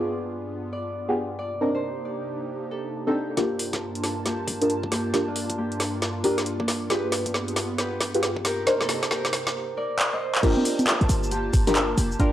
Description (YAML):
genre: UK garage, two-step garage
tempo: 136 BPM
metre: 4/4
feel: swing 63% on 16ths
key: G minor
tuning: A4 = 440 Hz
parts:
  - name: Celtic harp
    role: melody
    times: 0.0-12.3 s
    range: Bb3 to Eb5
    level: -31 LUFS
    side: equal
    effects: low-pass filter, cassette tape, analog delay
  - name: airy breathy pad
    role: sustained chords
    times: 0.0-12.3 s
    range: G2 to A5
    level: -33 LUFS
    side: right 1 dB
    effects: chorus, sidechain pumping, cassette tape
  - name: deep mellow chord stab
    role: stabs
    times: 0.0-12.3 s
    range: B3 to C5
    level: -26 LUFS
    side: equal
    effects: chorus, phaser, cassette tape, analog delay
  - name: electronic kick drum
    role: drums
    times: 3.4-12.3 s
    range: none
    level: -26 LUFS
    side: equal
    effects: high-pass filter on kick, cassette tape
  - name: garage drum kit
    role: drums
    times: 3.4-12.3 s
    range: cabasa, congas, crash cymbal, handclaps, hi-hat, snare drum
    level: -26 LUFS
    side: equal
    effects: high-pass filter on snare, cassette tape, high-pass filter on hats, high-pass filter on cymbals, high-pass filter on perc
  - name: short 808-style bass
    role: bass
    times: 10.4-12.3 s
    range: F1 to G1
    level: -24 LUFS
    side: equal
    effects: sidechain pumping
room: light reverb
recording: home recording on cassette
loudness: -23 LUFS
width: side -12 dB against mid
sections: 0.0-3.4 A section; 3.4-10.4 B section; 10.4-12.3 C section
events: filter sweep on synth stab 0.0-3.4, 3.4-10.4; build-up 3.4-10.4; drum fill 3.4-9.5, 10.0-10.4; filter sweep on harp 3.4-10.4; drop 10.4-12.3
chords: 0.0 G7b9; 1.4 Cm9; 3.4 Gm7; 6.9 G7b9; 8.4 Cm9; 10.4 Gm7